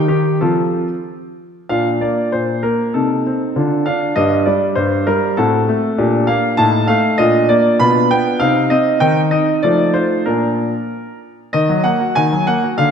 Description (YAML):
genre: classical-period piano sonatina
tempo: 98 BPM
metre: 2/4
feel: rubato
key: Bb major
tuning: A4 = 440 Hz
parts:
  - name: clear concert grand piano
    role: solo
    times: 0.0-12.9 s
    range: G2 to B5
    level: -13 LUFS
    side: equal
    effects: none
room: wet scoring stage reverb, RT60 1.7 s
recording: dark, warm production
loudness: -13 LUFS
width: side -7 dB against mid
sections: 0.0-1.7 A section; 1.7-11.5 B section; 11.5-12.9 C section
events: none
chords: 0.4 F; 1.7 Bb; 3.0 Adim/C; 3.6 Dm; 4.2 G5; 5.4 F#dim/A; 6.0 Gm/Bb; 6.6 F7/A; 7.2 Bb; 7.8 G7/B; 8.4 Cm; 9.0 Cm/Eb; 9.6 F7; 10.3 Bb; 11.5 Ebm